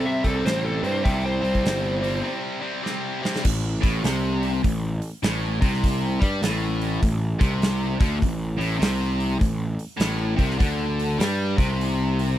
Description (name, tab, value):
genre	blues rock power trio and southern rock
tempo	101 BPM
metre	4/4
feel	swing 64% on 8ths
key	unclear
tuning	A4 = 440 Hz
part	overdriven slide guitar	melody	0.0-2.4 s	A4 to G5	-26 LUFS	equal	slapback echo
part	lead guitar through a small cranked amp	second line	0.0-2.4 s	C4 to C5	-35 LUFS	right 9 dB	overdrive
part	distorted electric guitar	riff	0.0-12.4 s	A2 to C4	-27 LUFS	left 1 dB	overdrive
part	fuzz picked electric bass	bass	0.0-12.3 s	G1 to C3	-25 LUFS	equal	overdrive
part	big rock drum kit	drums	0.2-12.3 s	crash cymbal, hi-hat, kick drum, snare drum	-25 LUFS	equal	none
room	little or no reverb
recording	dry, close 1970s-style studio recording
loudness	-21 LUFS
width	side -12 dB against mid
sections	0.0-3.4 A section; 3.4-12.4 B section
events	break 2.2-3.4; drum fill 2.8-3.4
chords	0.0 C; 3.4 Gsus24